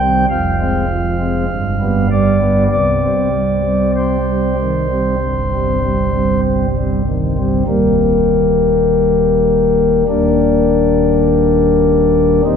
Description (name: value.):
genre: classical, chorale-style piece for pipe organ.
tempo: 49 BPM.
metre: 4/4.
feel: rubato.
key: Eb major from 7.7 s.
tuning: A4 = 439 Hz.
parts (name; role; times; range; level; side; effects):
pipe organ, flutes; solo; 0.0-12.6 s; Eb1 to G5; -12 LUFS; equal; none.
room: wet church reverb, RT60 3.6 s.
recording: heard from further back in the room.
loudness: -12 LUFS.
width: side -7 dB against mid.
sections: 0.0-7.7 A section; 7.7-12.6 B section.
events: none.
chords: 0.3 Fm; 1.5 G7; 2.7 Cm; 7.7 Eb; 10.1 Gm/Eb.